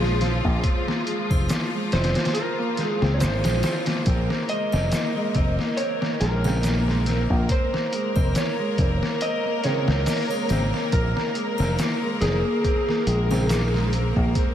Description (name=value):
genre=trip hop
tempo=70 BPM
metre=4/4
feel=swing 55% on 16ths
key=Bb minor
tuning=A4 = 442 Hz
part: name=electric slide guitar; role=melody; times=0.0-13.9 s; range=Ab4 to Eb5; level=-28 LUFS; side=right 1 dB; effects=tape echo
part: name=rich studio string section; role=sustained chords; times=0.0-14.5 s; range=F3 to Bb4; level=-29 LUFS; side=left 1 dB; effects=none
part: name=mellow electric guitar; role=arpeggios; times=0.0-14.5 s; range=Ab3 to C4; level=-30 LUFS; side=equal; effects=tape echo
part: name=fingered electric bass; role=bass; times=0.0-14.3 s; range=F1 to Db2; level=-23 LUFS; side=equal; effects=none
part: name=trip hop sampler-style drum kit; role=drums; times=0.0-14.5 s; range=hi-hat, kick drum, snare drum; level=-26 LUFS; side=equal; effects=studio reverb
part: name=triangle and tube shaker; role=percussion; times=1.3-13.7 s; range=none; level=-44 LUFS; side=right 1 dB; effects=none
part: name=tine electric piano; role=accompaniment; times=3.0-13.4 s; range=Db3 to C4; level=-33 LUFS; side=equal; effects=none
room=moderate huge ambient reverb, RT60 7.0 s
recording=dreamy mix soaked in reverb, vinyl crackle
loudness=-20 LUFS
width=side -10 dB against mid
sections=0.0-14.5 A section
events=none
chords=0.0 Bb7sus2